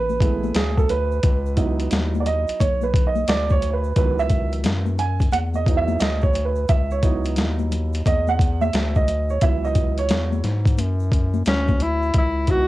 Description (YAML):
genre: hip hop, jazz-hop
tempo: 88 BPM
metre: 4/4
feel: swing 65% on 16ths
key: C# minor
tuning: A4 = 443 Hz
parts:
  - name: dark upright piano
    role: accompaniment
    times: 0.0-12.7 s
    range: D#3 to G#5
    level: -24 LUFS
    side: right 5 dB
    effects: none
  - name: round analog bass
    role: bass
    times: 0.0-12.7 s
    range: A1 to G#2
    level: -23 LUFS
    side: left 1 dB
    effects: none
  - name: congas and tube shaker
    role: percussion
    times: 0.1-12.1 s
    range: none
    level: -31 LUFS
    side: left 8 dB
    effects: none
  - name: boom bap sampler-style drum kit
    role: drums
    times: 0.2-12.7 s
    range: hi-hat, kick drum, snare drum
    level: -20 LUFS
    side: left 1 dB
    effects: cassette tape
  - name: breathy alto saxophone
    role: melody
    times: 11.5-12.7 s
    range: C#4 to F#4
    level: -21 LUFS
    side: left 1 dB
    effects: cassette tape
room: light reverb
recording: home recording on cassette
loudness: -18 LUFS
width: side -16 dB against mid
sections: 0.0-12.1 A section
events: upright piano solo 0.0-12.1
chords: 0.0 F#m11 (rootless); 1.2 C#m11